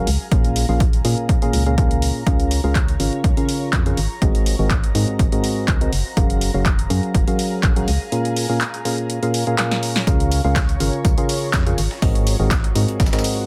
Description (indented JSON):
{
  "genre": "piano house",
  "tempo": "123 BPM",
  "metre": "4/4",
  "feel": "swing 53% on 16ths",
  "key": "Bb minor",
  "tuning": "A4 = 441 Hz",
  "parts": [
    { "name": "percussive organ stab", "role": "riff", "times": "0.0-13.5 s", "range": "Ab2 to F5", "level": "-24 LUFS", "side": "equal", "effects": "chorus, sidechain pumping, dub echo" },
    { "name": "organ-like FM bass", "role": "bass", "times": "0.0-13.1 s", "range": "Gb1 to Bb2", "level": "-23 LUFS", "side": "equal", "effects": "sidechain pumping" },
    { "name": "granular cloud pad", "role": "texture", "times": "0.0-13.5 s", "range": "F4 to Bb5", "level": "-36 LUFS", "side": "equal", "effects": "built-in reverb, sidechain pumping" },
    { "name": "punchy analog drum machine", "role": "drums", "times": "0.1-13.3 s", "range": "handclaps, hi-hat, snare drum", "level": "-28 LUFS", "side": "equal", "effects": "none" },
    { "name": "electronic kick drum", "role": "drums", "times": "0.3-13.1 s", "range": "none", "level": "-21 LUFS", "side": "equal", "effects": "none" },
    { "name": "breakbeat sampler-style drum kit", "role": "drums", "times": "10.1-13.4 s", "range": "hi-hat, snare drum, tambourine", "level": "-34 LUFS", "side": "equal", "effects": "high-pass filter on perc, high-pass filter on snare, high-pass filter on hats" }
  ],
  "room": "light reverb",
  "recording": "none",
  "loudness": "-19 LUFS",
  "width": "mono",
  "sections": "0.0-13.5 A section",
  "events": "fade-in on ambient pad 0.0-13.5; drum fill 9.6-10.1",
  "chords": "0.3 Bbm7; 2.3 Db6; 4.2 Ab9; 5.9 Gbmaj9; 8.1 Bbm7; 10.1 Db6; 12.0 Ab9"
}